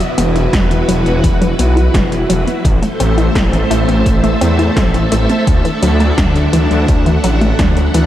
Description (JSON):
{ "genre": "synthwave", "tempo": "85 BPM", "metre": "4/4", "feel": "straight", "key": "unclear", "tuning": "A4 = 440 Hz", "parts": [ { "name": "string machine, full ensemble", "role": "sustained chords", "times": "0.0-8.1 s", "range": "A3 to F#5", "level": "-17 LUFS", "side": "equal", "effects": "ensemble chorus, sidechain pumping" }, { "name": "wide unison pluck", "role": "arpeggios", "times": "0.0-8.1 s", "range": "D3 to A4", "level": "-18 LUFS", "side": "left 1 dB", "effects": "diffuse ambient delay" }, { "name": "80s electronic pad drums", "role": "drums", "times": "0.0-8.1 s", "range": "hi-hat, snare drum", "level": "-22 LUFS", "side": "equal", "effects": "none" }, { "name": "wide detuned saw bass", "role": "bass", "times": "0.2-8.1 s", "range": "E1 to E2", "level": "-14 LUFS", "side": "equal", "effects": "chorus, sidechain pumping" }, { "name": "electronic kick drum", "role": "drums", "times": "0.5-7.7 s", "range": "none", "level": "-15 LUFS", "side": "equal", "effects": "none" } ], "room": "moderate cathedral reverb, RT60 5.0 s", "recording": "dreamy mix soaked in reverb", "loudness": "-10 LUFS", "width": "side -12 dB against mid", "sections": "0.0-8.1 A section", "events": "filter sweep on synth arpeggio sound 0.0-8.1", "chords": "0.0 Esus2; 2.6 Am; 5.5 Dadd9" }